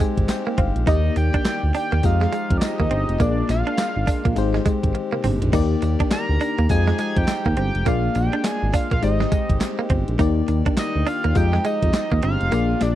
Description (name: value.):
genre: R&B, new jack swing.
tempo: 103 BPM.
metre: 4/4.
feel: swing 61% on 16ths.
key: Eb major.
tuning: A4 = 440 Hz.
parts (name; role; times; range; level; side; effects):
FM electric piano; accompaniment; 0.0-13.0 s; Ab3 to Ab5; -26 LUFS; left 9 dB; chorus.
hand-pumped harmonium; sustained chords; 0.0-13.0 s; Eb3 to D5; -32 LUFS; right 2 dB; none.
direct-recorded clean electric guitar; riff; 0.0-12.8 s; Ab3 to Eb4; -27 LUFS; right 6 dB; lush chorus.
gated 80s digital drum machine; drums; 0.0-13.0 s; crash cymbal, handclaps, hi-hat, kick drum, snare drum, tambourine, toms; -23 LUFS; equal; gated reverb, gated reverb snare.
smooth synth bass; bass; 0.2-13.0 s; F1 to F2; -21 LUFS; equal; none.
fat analog lead; melody; 0.9-13.0 s; D5 to Bb5; -26 LUFS; right 1 dB; chorus, slapback echo.
room: little or no reverb.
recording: dry, close 1970s-style studio recording.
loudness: -18 LUFS.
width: side -13 dB against mid.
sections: 0.0-13.0 A section.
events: FM electric piano fill 0.0-0.9; drum fill 4.9-5.5; kick muted 12.5-13.0.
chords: 0.0 Abmaj7; 0.9 Ebmaj7; 2.0 Fm9; 3.2 Bb7; 4.4 Abmaj7; 5.5 Ebmaj7; 6.7 Fm9; 7.9 Bb7; 9.0 Abmaj7; 10.2 Ebmaj7; 11.4 Fm9.